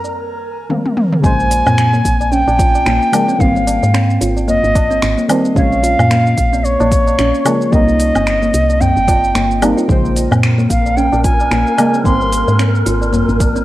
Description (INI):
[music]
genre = organic downtempo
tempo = 111 BPM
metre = 4/4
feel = swing 57% on 16ths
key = Bb dorian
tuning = A4 = 440 Hz
[part]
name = bright reedy bansuri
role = melody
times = 0.0-12.6 s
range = Db5 to C6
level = -17 LUFS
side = equal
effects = cassette tape, tape echo
[part]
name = deep mellow chord stab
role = accompaniment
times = 0.0-13.6 s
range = Db3 to Db5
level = -19 LUFS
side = equal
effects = chorus, sidechain pumping, cassette tape, analog delay
[part]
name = organic electronic drum kit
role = drums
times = 0.0-13.6 s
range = finger snaps, hi-hat, shaker, toms, woodblock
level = -21 LUFS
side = equal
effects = none
[part]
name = tabla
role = percussion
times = 0.0-13.6 s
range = none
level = -24 LUFS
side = equal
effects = none
[part]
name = wind-like tuned noise texture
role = texture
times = 0.0-0.2, 10.5-13.6 s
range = Bb4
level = -24 LUFS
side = left 1 dB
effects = built-in reverb, cassette tape
[part]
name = kalimba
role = arpeggios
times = 1.2-13.6 s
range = Bb3 to F4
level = -19 LUFS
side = equal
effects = cassette tape, analog delay
[part]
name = woody FM bass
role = bass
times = 1.2-13.6 s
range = G1 to Bb2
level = -16 LUFS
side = equal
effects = tube saturation, sidechain pumping
[part]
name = electronic kick drum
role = drums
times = 1.2-13.5 s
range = none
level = -15 LUFS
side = equal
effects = none
[sound]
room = light reverb, digital ambience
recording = home recording on cassette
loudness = -11 LUFS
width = side -15 dB against mid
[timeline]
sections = 0.0-1.2 A section; 1.2-13.6 B section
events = filter sweep 0.0-1.2; drum fill 0.7-1.2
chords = 0.0 Cm7; 1.2 Bbm7; 3.4 Abmaj7; 5.6 Bbm7; 7.7 Cm7; 9.9 Bbm7; 12.1 Abmaj7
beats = 0.16 0.70 | 1.24 1.78 2.32 2.86 | 3.40 3.94 4.49 5.03 | 5.57 6.11 6.65 7.19 | 7.73 8.27 8.81 9.35 | 9.89 10.43 10.97 11.51 | 12.05 12.59 13.13